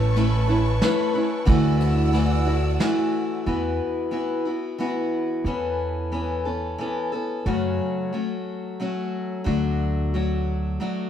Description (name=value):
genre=acoustic folk duo or small band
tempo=90 BPM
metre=3/4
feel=straight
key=unclear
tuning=A4 = 440 Hz
part: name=picked steel-string acoustic guitar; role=accompaniment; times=0.0-11.1 s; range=F#2 to B4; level=-24 LUFS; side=left 2 dB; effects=none
part: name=warm symphonic string section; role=sustained chords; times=0.0-3.5 s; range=B4 to E6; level=-32 LUFS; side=right 3 dB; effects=none
part: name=upright bass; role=bass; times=0.0-10.8 s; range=A1 to F#2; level=-23 LUFS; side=right 1 dB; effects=none
part: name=vintage brush drum kit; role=drums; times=0.2-3.0 s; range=kick drum, ride cymbal, snare drum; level=-26 LUFS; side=right 1 dB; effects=none
room=moderate spring reverb, RT60 2.1 s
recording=heard from further back in the room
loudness=-21 LUFS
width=side -9 dB against mid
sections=0.0-3.5 A section; 3.5-11.1 B section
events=none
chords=0.0 Aadd9; 1.5 Dadd9; 3.5 Esus2; 5.5 Aadd9/E; 7.5 F#m; 9.5 D